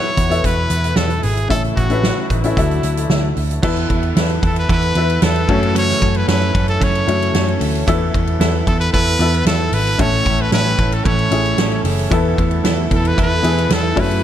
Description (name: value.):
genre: piano-driven pop.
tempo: 113 BPM.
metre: 4/4.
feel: straight.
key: unclear.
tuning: A4 = 440 Hz.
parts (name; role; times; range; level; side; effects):
brilliant trumpet; melody; 0.0-14.2 s; E4 to C#5; -21 LUFS; equal; analog delay.
felt-muted upright piano; accompaniment; 0.0-14.2 s; A2 to F#5; -22 LUFS; left 4 dB; analog delay.
dark studio string section; sustained chords; 0.0-3.6, 12.1-14.2 s; B2 to E4; -28 LUFS; right 1 dB; none.
vintage muted picked electric bass; bass; 0.2-14.2 s; F#1 to F#2; -19 LUFS; equal; none.
loose indie drum kit; drums; 0.2-14.2 s; crash cymbal, hi-hat, kick drum, ride cymbal, snare drum; -20 LUFS; equal; analog delay.
direct-recorded clean electric guitar; riff; 3.6-14.2 s; F#2 to A4; -24 LUFS; right 6 dB; analog delay.
room: light reverb, studio ambience.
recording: echo-heavy mix.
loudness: -14 LUFS.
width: side -10 dB against mid.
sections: 0.0-3.6 A section; 3.6-14.2 B section.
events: none.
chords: 0.0 Esus4; 1.5 A; 2.6 Dadd9; 3.6 Esus4; 5.5 F#m7; 7.9 Esus4; 10.0 A; 12.1 Esus4.